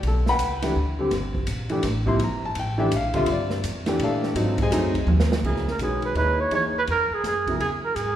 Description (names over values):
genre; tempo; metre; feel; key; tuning
modal jazz; 167 BPM; 3/4; swing 64% on 8ths; unclear; A4 = 435 Hz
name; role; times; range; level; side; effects
warm concert grand piano; accompaniment; 0.0-7.6 s; C3 to C6; -25 LUFS; left 1 dB; none
upright bass; bass; 0.0-8.2 s; G1 to Bb2; -26 LUFS; equal; none
open jazz drum kit; drums; 0.0-8.1 s; crash cymbal, hi-hat, kick drum, ride cymbal, snare drum, toms; -30 LUFS; right 2 dB; none
mellow trumpet; melody; 5.5-8.2 s; G#4 to C#5; -23 LUFS; right 4 dB; none
room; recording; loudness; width
wet recital hall reverb, RT60 1.5 s; recorded in a church or concert hall; -21 LUFS; side -11 dB against mid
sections
0.0-5.4 A section; 5.4-8.2 B section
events
drum fill 5.1-5.4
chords
0.0 Em9 (rootless); 1.1 Gm9; 4.4 G#7b9; 5.4 C#m9